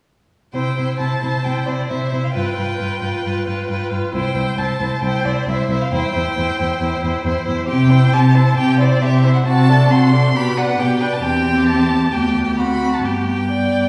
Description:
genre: quick classical-period movement for string quartet.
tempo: 134 BPM.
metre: 4/4.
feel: straight.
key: C major, G major from 7.7 s.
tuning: A4 = 438 Hz.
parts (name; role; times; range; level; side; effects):
rich violin; melody; 0.5-13.9 s; D5 to C6; -26 LUFS; equal; none.
rich violin; second line; 0.5-13.9 s; F#4 to D5; -26 LUFS; equal; none.
rich viola; accompaniment; 0.5-13.9 s; B3 to F4; -24 LUFS; equal; none.
rich cello; bass; 0.5-13.9 s; C2 to C3; -20 LUFS; equal; none.
room: wet scoring stage reverb, RT60 1.7 s.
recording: heard from further back in the room, small room ambience.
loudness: -17 LUFS.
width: mono.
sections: 0.5-13.9 A section.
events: none.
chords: 0.5 C; 2.3 G7; 4.1 C; 5.9 C/E; 7.7 C; 9.5 D7/C; 10.4 G/B; 11.2 C/E; 12.1 G/D; 12.6 D7; 13.1 G.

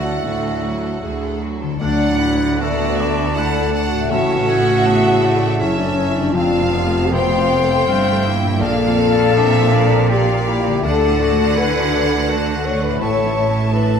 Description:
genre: cinematic, emotional film score for orchestra.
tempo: 80 BPM.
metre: 3/4.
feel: uneven beats, rubato.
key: unclear.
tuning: A4 = 440 Hz.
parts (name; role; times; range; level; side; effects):
rich studio violin section; melody; 0.0-14.0 s; F#4 to A5; -26 LUFS; left 2 dB; none.
bright clarinet; second line; 0.0-14.0 s; A3 to F#4; -29 LUFS; left 1 dB; none.
clear studio violin section; second line; 0.0-14.0 s; C#5 to F#5; -28 LUFS; right 1 dB; none.
mellow cor anglais; second line; 0.0-14.0 s; D5 to A5; -28 LUFS; right 4 dB; none.
silver concert flute; second line; 0.0-14.0 s; C#5 to C#6; -28 LUFS; left 1 dB; none.
rich studio viola section; accompaniment; 0.0-14.0 s; C3 to G#4; -28 LUFS; right 2 dB; none.
warm grand piano; accompaniment; 0.0-14.0 s; Bb1 to D5; -26 LUFS; left 2 dB; none.
dark French horn section; sustained chords; 0.0-14.0 s; F#3 to C#5; -19 LUFS; left 4 dB; none.
concert harp; arpeggios; 0.0-14.0 s; F2 to A4; -29 LUFS; left 8 dB; none.
rich studio cello section; bass; 0.0-14.0 s; D2 to D3; -22 LUFS; right 3 dB; none.
rich studio double bass section; bass; 0.0-14.0 s; F1 to D2; -23 LUFS; right 4 dB; none.
room: wet recital hall reverb, RT60 1.6 s.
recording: none.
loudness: -14 LUFS.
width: side -7 dB against mid.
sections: 0.0-1.8 A section; 1.8-14.0 B section.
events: none.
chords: 0.0 Dadd9; 1.8 D; 4.1 A; 6.3 F; 8.6 Bb; 10.8 D; 13.0 A.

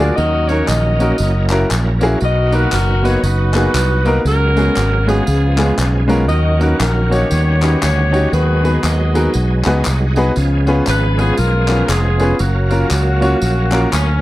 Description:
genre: uptempo gospel.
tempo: 118 BPM.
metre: 4/4.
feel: swing 62% on 8ths.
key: F# major.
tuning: A4 = 440 Hz.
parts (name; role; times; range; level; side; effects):
bright saxophone section; melody; 0.0-14.2 s; A#3 to D#5; -20 LUFS; left 1 dB; slapback echo.
clear baby grand piano; accompaniment; 0.0-13.9 s; B2 to C#5; -18 LUFS; left 1 dB; none.
bright tonewheel organ; sustained chords; 0.0-14.2 s; D#3 to G#5; -23 LUFS; right 3 dB; slow rotary speaker, chorus vibrato.
fingered electric bass; bass; 0.0-14.2 s; E#1 to D#2; -15 LUFS; equal; none.
tambourine and handclaps; percussion; 0.2-14.1 s; none; -25 LUFS; left 2 dB; none.
room: little or no reverb.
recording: dry, close 1970s-style studio recording.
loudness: -12 LUFS.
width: side -16 dB against mid.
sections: 0.0-14.2 A section.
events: tonewheel organ fill 9.3-10.4.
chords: 0.2 D#m7; 1.2 F#7; 2.2 Bmaj7; 4.3 C#7sus4; 5.3 C#7; 6.3 D#m7; 7.3 D#7alt; 8.3 G#m7/D#; 10.4 C#7; 12.4 F#maj7.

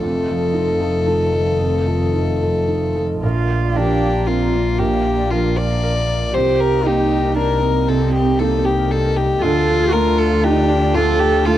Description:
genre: neoclassical piano and strings.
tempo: 116 BPM.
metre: 3/4.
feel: rubato.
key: unclear.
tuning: A4 = 440 Hz.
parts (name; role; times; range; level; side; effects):
rich violin; melody; 0.0-11.6 s; F4 to D5; -19 LUFS; left 4 dB; tape echo.
dark cello; second line; 0.0-11.6 s; Eb3 to A4; -22 LUFS; right 7 dB; none.
felt-muted upright piano; accompaniment; 0.0-11.6 s; Bb1 to Bb4; -22 LUFS; right 3 dB; none.
chorused pulse-width pad; sustained chords; 0.0-11.6 s; A3 to Eb5; -29 LUFS; equal; none.
dark double bass; bass; 0.0-11.6 s; F1 to D2; -21 LUFS; left 1 dB; none.
concert harp; arpeggios; 3.2-11.6 s; C4 to Bb5; -30 LUFS; equal; tape echo.
room: light reverb.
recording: dry, close 1970s-style studio recording.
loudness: -15 LUFS.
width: side -12 dB against mid.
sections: 0.0-3.2 A section; 3.2-11.6 B section.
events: none.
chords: 0.0 F7; 3.2 Bb; 6.3 Cm7; 9.4 Dm.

